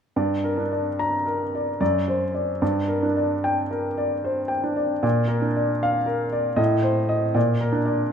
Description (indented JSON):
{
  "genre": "classical, romantic character piece for solo piano",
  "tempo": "75 BPM",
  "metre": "3/4",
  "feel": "uneven beats, rubato",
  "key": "G minor",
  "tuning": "A4 = 442 Hz",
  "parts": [
    { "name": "warm baby grand piano", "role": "solo", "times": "0.2-8.1 s", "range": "F#2 to Bb5", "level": "-21 LUFS", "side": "equal", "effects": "none" }
  ],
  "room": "moderate recital hall reverb, RT60 1.3 s",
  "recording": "none",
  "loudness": "-21 LUFS",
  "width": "side -7 dB against mid",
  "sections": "0.2-8.1 A section",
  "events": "none",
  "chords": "0.2 Gm; 1.8 D7/F#; 2.6 Gm; 5.0 Bb; 6.6 Adim; 7.4 Bb"
}